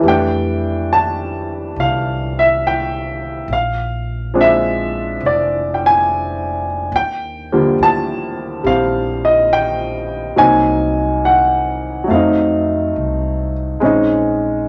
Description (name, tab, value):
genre	jazz ballad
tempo	70 BPM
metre	4/4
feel	swing 68% on 8ths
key	F major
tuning	A4 = 440 Hz
part	clear grand piano	accompaniment	0.0-14.7 s	D3 to A5	-17 LUFS	equal	none
part	upright bass	bass	0.0-14.7 s	F1 to F2	-26 LUFS	equal	none
room	wet studio reverb, RT60 0.5 s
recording	none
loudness	-17 LUFS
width	mono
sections	0.0-14.7 A section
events	none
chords	0.0 Fmaj13; 3.5 Bb7; 6.9 Ebmaj9; 10.4 Cm7b5; 12.1 F7b9; 13.8 Bbm11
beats	| 0.05 0.91 1.77 2.63 | 3.49 4.35 5.21 6.07 | 6.92 7.78 8.64 9.50 | 10.36 11.22 12.09 12.95 | 13.81 14.67